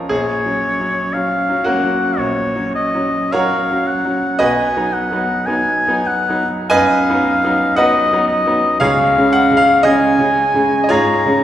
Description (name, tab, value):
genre	classical, romantic duo for oboe and grand piano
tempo	46-59 BPM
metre	4/4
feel	rubato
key	F# major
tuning	A4 = 440 Hz
part	bright grand piano	accompaniment	0.0-11.4 s	A#1 to G#5	-16 LUFS	right 1 dB	none
part	clear oboe	melody	0.1-11.4 s	C#5 to A#5	-17 LUFS	left 2 dB	none
room	wet recital hall reverb, RT60 1.8 s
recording	heard from further back in the room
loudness	-13 LUFS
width	side -11 dB against mid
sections	0.0-11.4 A section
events	none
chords	0.1 F#/A#; 4.4 B; 8.8 C#